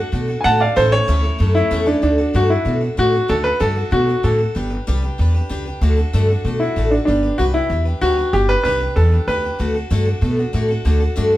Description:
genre	rockabilly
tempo	190 BPM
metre	4/4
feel	straight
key	D major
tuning	A4 = 439 Hz
part	warm upright piano	melody	0.0-9.7 s	D4 to A5	-17 LUFS	equal	none
part	picked steel-string acoustic guitar	accompaniment	0.0-11.4 s	A2 to B4	-23 LUFS	left 1 dB	none
part	upright bass	bass	0.1-11.4 s	G1 to B2	-18 LUFS	equal	none
room	moderate large studio reverb, RT60 1.1 s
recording	band playing live in one room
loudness	-15 LUFS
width	side -15 dB against mid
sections	0.0-2.0 A section; 2.0-11.4 B section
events	upright piano solo 0.0-2.0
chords	0.0 D; 0.8 A; 2.0 D; 4.6 G; 5.8 D; 7.1 G; 9.6 D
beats	0.13 0.45 | 0.76 1.08 1.40 1.71 | 2.03 2.34 2.66 2.98 | 3.29 3.61 3.92 4.24 | 4.56 4.87 5.19 5.50 | 5.82 6.13 6.45 6.76 | 7.08 7.39 7.71 8.02 | 8.34 8.65 8.97 9.28 | 9.60 9.91 10.23 10.54 | 10.86 11.17

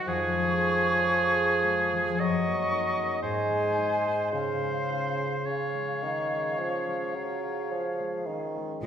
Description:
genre	classical, slow romantic movement for symphony orchestra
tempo	52-60 BPM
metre	4/4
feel	rubato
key	Db major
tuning	A4 = 441 Hz
part	bright concert flute	second line	0.0-8.5 s	F5 to Db6	-34 LUFS	left 1 dB	none
part	clear oboe	second line	0.0-8.3 s	Ab4 to Eb5	-29 LUFS	right 1 dB	none
part	concert harp	arpeggios	0.0-8.9 s	F2 to Db5	-32 LUFS	left 2 dB	none
part	clear bassoon	accompaniment	0.1-8.8 s	Db3 to Ab3	-30 LUFS	right 1 dB	none
room	wet recital hall reverb, RT60 1.6 s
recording	recorded in a church or concert hall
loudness	-25 LUFS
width	side -8 dB against mid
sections	0.0-8.8 A section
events	none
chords	0.1 Db/F; 2.2 Ebm7/Gb; 3.2 Ab; 4.3 Db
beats	| 0.06 1.08 2.18 3.22 | 4.32 5.46 6.59 7.71 | 8.84

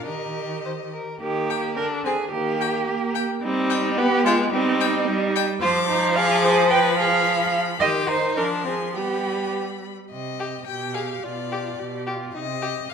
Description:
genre	quick classical-period movement for string quartet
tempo	108 BPM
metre	2/4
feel	rubato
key	Eb major, C minor from 5.6 s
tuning	A4 = 440 Hz
part	rich violin	melody	0.0-12.9 s	D5 to D6	-30 LUFS	left 10 dB	none
part	rich violin	second line	0.0-12.7 s	G3 to C5	-26 LUFS	left 4 dB	none
part	rich viola	accompaniment	0.0-12.9 s	D3 to A4	-26 LUFS	right 2 dB	none
part	rich cello	bass	0.0-12.9 s	B2 to G5	-24 LUFS	right 4 dB	none
room	moderate scoring stage reverb, RT60 1.7 s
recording	none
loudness	-20 LUFS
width	side -6 dB against mid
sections	0.0-1.2 A section; 1.2-10.1 B section; 10.1-12.9 A section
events	none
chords	0.1 Eb; 1.8 Bb7/D (rootless); 2.3 Eb; 3.4 Cm/G; 4.0 G7/B; 4.5 Cm/G; 5.6 Dm7b5/F; 6.7 G7/F (rootless); 7.8 Cm/Eb; 8.4 Dm7b5/F; 9.0 G; 10.1 Cm; 10.7 G7b9/B; 11.2 G7/B; 12.3 Cm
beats	| 0.06 0.64 | 1.22 1.77 | 2.33 2.88 | 3.43 3.98 | 4.53 5.07 | 5.61 6.16 | 6.70 7.25 | 7.80 8.37 | 8.95 9.54 | 10.12 10.68 | 11.23 11.79 | 12.34 12.90

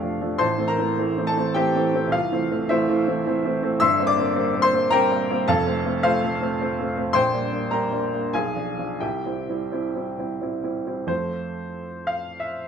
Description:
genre	classical, romantic character piece for solo piano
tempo	85-110 BPM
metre	3/4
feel	rubato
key	F major from 3.8 s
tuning	A4 = 440 Hz
part	clear baby grand piano	solo	0.0-12.7 s	F1 to E6	-21 LUFS	equal	none
room	light reverb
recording	minimal, uncompressed stereo recording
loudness	-21 LUFS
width	side -7 dB against mid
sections	0.0-11.1 A section; 11.1-12.7 B section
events	none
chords	0.4 Am; 2.1 Am/C; 3.8 C7/G; 5.5 F; 7.2 Gm/Bb; 8.3 Bdim7; 9.0 C; 11.1 F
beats	| 0.40 0.97 1.55 | 2.12 2.68 3.24 | 3.80 4.34 4.90 | 5.47 6.03 6.60 | 7.16 7.73 8.35 | 9.02 9.72 10.41 | 11.09 11.76 12.40

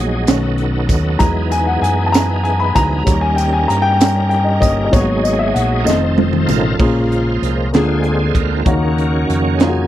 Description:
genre	slow gospel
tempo	64 BPM (dotted quarters)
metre	6/8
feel	straight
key	Bb minor from 6.8 s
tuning	A4 = 440 Hz
part	dark upright piano	accompaniment	0.0-9.9 s	Bb2 to B5	-17 LUFS	left 2 dB	none
part	bright tonewheel organ	sustained chords	0.0-9.9 s	C#3 to C5	-21 LUFS	right 3 dB	slow rotary speaker, chorus vibrato
part	fingered electric bass	bass	0.0-9.9 s	F1 to G2	-18 LUFS	equal	none
part	crisp fusion drum kit	drums	0.3-9.7 s	crash cymbal, hi-hat, kick drum, snare drum, toms	-16 LUFS	right 1 dB	none
part	tambourine	percussion	0.3-6.8 s	none	-30 LUFS	right 20 dB	none
room	small room reverb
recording	none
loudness	-13 LUFS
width	side -12 dB against mid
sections	0.0-6.8 A section; 6.8-9.9 B section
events	upright piano solo 0.0-6.8; drum fill 5.9-6.8; tonewheel organ solo 6.8-9.9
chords	0.3 B7; 1.2 Emaj7; 3.1 D#7; 4.9 G#m7; 5.9 F7; 6.8 Bbm7; 7.7 Bb7/D; 8.7 Ebm7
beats	0.28 | 1.21 2.14 | 3.07 4.00 | 4.93 5.87 | 6.80 7.73 | 8.66 9.60

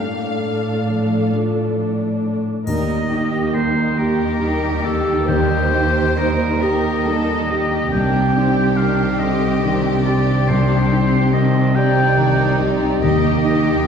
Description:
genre	cinematic, emotional film score for orchestra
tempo	46 BPM (dotted quarters)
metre	6/8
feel	rubato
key	unclear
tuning	A4 = 439 Hz
part	rich studio violin section	melody	0.0-13.9 s	D4 to F5	-30 LUFS	left 4 dB	none
part	felt-muted upright piano	accompaniment	0.0-13.9 s	C2 to G4	-21 LUFS	equal	none
part	warm studio viola section	accompaniment	0.0-13.9 s	D3 to D5	-25 LUFS	right 2 dB	none
part	concert harp	arpeggios	0.0-13.9 s	C3 to G4	-25 LUFS	left 3 dB	none
part	rich studio cello section	bass	0.0-13.9 s	A2 to Eb3	-23 LUFS	right 1 dB	none
part	clear oboe	second line	2.7-13.9 s	G4 to G5	-22 LUFS	equal	none
part	rich studio double bass section	bass	2.7-13.9 s	C2 to Eb2	-24 LUFS	right 3 dB	none
part	triangle	percussion	2.7-4.4 s	none	-43 LUFS	left 1 dB	none
part	rich studio violin section	second line	4.0-13.9 s	Eb4 to C5	-25 LUFS	left 4 dB	none
room	wet concert hall reverb, RT60 2.2 s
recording	heard from further back in the room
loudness	-15 LUFS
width	side -7 dB against mid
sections	0.0-2.7 A section; 2.7-13.9 B section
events	none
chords	0.0 Dm/A; 2.7 Eb; 7.9 Cmadd9; 13.0 Eb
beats	1.32 | 2.66 3.96 | 5.27 6.61 | 7.91 9.20 | 10.48 11.75 | 13.02

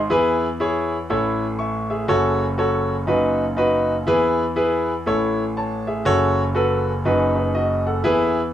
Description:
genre	soul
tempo	121 BPM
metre	4/4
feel	swing 62% on 8ths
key	E major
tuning	A4 = 441 Hz
part	clear concert grand piano	solo	0.0-8.5 s	F#1 to C#6	-18 LUFS	equal	none
room	moderate studio ambience, RT60 0.5 s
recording	band playing live in one room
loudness	-18 LUFS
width	side -11 dB against mid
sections	0.1-8.5 A section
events	none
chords	0.1 E; 1.1 A; 2.1 F#m; 3.1 B/F#; 4.1 E; 5.1 A; 6.1 F#m; 7.0 B/F#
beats	| 0.10 0.60 1.09 1.59 | 2.09 2.58 3.08 3.58 | 4.07 4.57 5.06 5.56 | 6.05 6.55 7.05 7.54 | 8.04 8.53

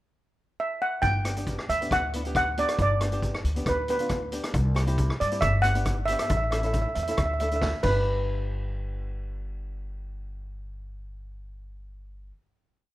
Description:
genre	calypso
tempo	137 BPM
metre	4/4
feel	straight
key	G major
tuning	A4 = 441 Hz
part	steel pan	melody	0.6-12.3 s	B4 to G5	-26 LUFS	right 1 dB	none
part	upright bass	bass	1.0-12.3 s	G1 to G2	-29 LUFS	equal	none
part	street-band drum kit	drums	1.0-7.9 s	crash cymbal, hi-hat, kick drum, rim click, snare drum	-32 LUFS	equal	none
part	flamenco guitar	accompaniment	1.2-12.3 s	B3 to B4	-35 LUFS	left 1 dB	none
room	light reverb, small room ambience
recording	rough home demo mix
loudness	-24 LUFS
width	side -15 dB against mid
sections	0.0-1.0 pickup bar; 1.0-8.1 verse; 8.1-11.6 final hit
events	drum fill 7.6-8.1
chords	0.0 N.C.; 1.0 Gmaj7; 2.8 G; 4.5 C; 5.4 Gmaj7; 6.3 A; 7.2 Dsus2; 7.8 G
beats	0.15 0.59 | 1.03 1.47 1.91 2.35 | 2.79 3.23 3.67 4.11 | 4.55 4.99 5.43 5.87 | 6.30 6.74 7.18 7.62 | 8.06 8.49 8.93 9.37 | 9.81 10.25 10.69 11.12

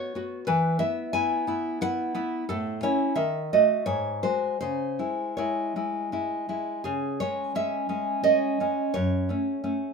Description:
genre	romantic piece for solo classical guitar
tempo	79-92 BPM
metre	3/4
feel	rubato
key	C# minor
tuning	A4 = 440 Hz
part	nylon-string guitar	solo	0.0-9.9 s	F#2 to G#5	-24 LUFS	equal	none
room	light reverb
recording	minimal, uncompressed stereo recording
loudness	-24 LUFS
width	side -5 dB against mid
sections	0.0-6.8 A section; 6.8-9.9 A section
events	none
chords	0.5 E; 2.5 A; 3.1 D#dim; 3.9 G#7; 4.6 C#m; 8.9 F#m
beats	| 0.48 1.13 1.79 | 2.46 3.15 3.86 | 4.59 5.35 6.10 | 6.84 7.54 8.25 | 8.95 9.63

